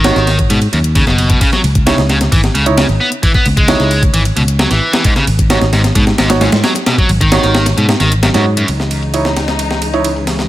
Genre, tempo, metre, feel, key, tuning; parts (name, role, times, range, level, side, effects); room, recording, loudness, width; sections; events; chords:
breakbeat, breaks; 132 BPM; 4/4; straight; C# minor; A4 = 440 Hz
distorted electric guitar; riff; 0.0-8.7 s; F#2 to B3; -15 LUFS; equal; overdrive, vintage 12-bit sampler grit, tape echo
clear grand piano; stabs; 0.0-10.1 s; D#4 to C#5; -19 LUFS; right 4 dB; low-pass filter, tape echo
fingered electric bass; bass; 0.0-10.5 s; F#1 to G#2; -14 LUFS; equal; low-pass filter
breakbeat sampler-style drum kit; drums; 0.0-10.5 s; kick drum, ride cymbal, snare drum; -14 LUFS; equal; high-pass filter on cymbals, studio reverb, high-pass filter on kick, high-pass filter on snare
electronic hi-hat; drums; 0.0-10.5 s; -26 LUFS; left 5 dB; low-pass filter on hats, studio reverb, low-pass filter on room
warm studio string section; sustained chords; 8.7-10.5 s; C#3 to D#4; -20 LUFS; left 3 dB; vintage 12-bit sampler grit, sidechain pumping
light reverb, digital ambience; -10 LUFS; side -15 dB against mid
0.0-8.7 A section; 8.7-10.5 B section
0.0 G#7sus4; 1.4 C#m; 5.0 G#7sus4; 8.7 C#madd9